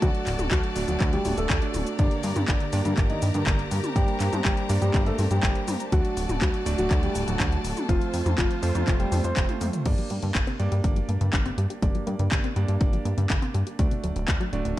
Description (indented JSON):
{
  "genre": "italo disco",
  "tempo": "122 BPM",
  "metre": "4/4",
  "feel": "straight",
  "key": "G harmonic minor",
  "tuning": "A4 = 440 Hz",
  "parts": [
    { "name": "dark baby grand piano", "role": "melody", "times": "0.0-9.8 s", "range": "D3 to C5", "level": "-30 LUFS", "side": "left 1 dB", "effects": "tape echo" },
    { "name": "clear studio string section", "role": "sustained chords", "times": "0.0-9.8 s", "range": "F4 to Bb5", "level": "-34 LUFS", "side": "left 2 dB", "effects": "none" },
    { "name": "warm electric grand piano", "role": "stabs", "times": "0.0-14.8 s", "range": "A3 to D5", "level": "-33 LUFS", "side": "right 5 dB", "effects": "none" },
    { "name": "chorused synth bass", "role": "bass", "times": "0.0-14.7 s", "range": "D1 to G2", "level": "-26 LUFS", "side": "equal", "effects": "none" },
    { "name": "electronic kick drum", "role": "drums", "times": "0.0-14.4 s", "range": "none", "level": "-24 LUFS", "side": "equal", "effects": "overdrive" },
    { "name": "house drum kit", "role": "drums", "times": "0.0-14.8 s", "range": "cabasa, crash cymbal, handclaps, hi-hat, toms", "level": "-31 LUFS", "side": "left 1 dB", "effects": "overdrive" },
    { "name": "analog pluck", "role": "arpeggios", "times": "9.9-14.7 s", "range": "A2 to G4", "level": "-34 LUFS", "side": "left 2 dB", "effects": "chorus, tape echo" }
  ],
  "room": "light reverb",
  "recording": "dark, warm production",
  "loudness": "-22 LUFS",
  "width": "side -15 dB against mid",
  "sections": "0.0-9.9 A section; 9.9-14.8 B section",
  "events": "drum fill 9.5-9.9",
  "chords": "0.0 D; 2.0 Gm; 5.9 D; 7.9 F; 9.9 Gm; 13.8 D"
}